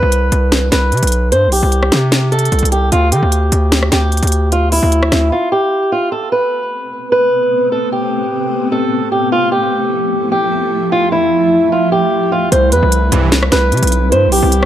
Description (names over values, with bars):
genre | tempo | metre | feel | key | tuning
hip hop, trap | 150 BPM | 4/4 | half-time | A minor | A4 = 441 Hz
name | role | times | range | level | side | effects
fingerpicked swing-style acoustic guitar | melody | 0.0-14.7 s | E4 to C5 | -14 LUFS | right 1 dB | low-pass filter, digital delay
distorted 808-style bass | bass | 0.0-5.3, 12.5-14.7 s | B1 to D3 | -13 LUFS | equal | distortion
trap drum kit | drums | 0.1-5.2, 12.5-14.7 s | hi-hat, rim click, snare drum | -16 LUFS | equal | none
granular cloud pad | sustained chords | 7.0-14.7 s | F3 to E4 | -19 LUFS | left 1 dB | built-in reverb
big bright polysynth | stabs | 13.1-13.3 s | G2 to E3 | -18 LUFS | right 3 dB | none
room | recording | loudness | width
digital ambience | none | -11 LUFS | side -11 dB against mid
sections
0.0-6.1 A section; 6.1-14.7 B section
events
break 5.3-6.1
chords
0.0 C5; 2.9 Dmadd11; 6.1 Amadd9; 9.3 Fmaj7; 12.5 C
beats
0.12 0.52 0.92 | 1.32 1.72 2.12 2.52 | 2.92 3.32 3.72 4.12 | 4.52 4.92 5.32 5.72 | 6.12 6.52 6.92 7.32 | 7.72 8.12 8.52 8.92 | 9.32 9.72 10.12 10.52 | 10.92 11.32 11.72 12.12 | 12.52 12.92 13.32 13.72 | 14.12 14.52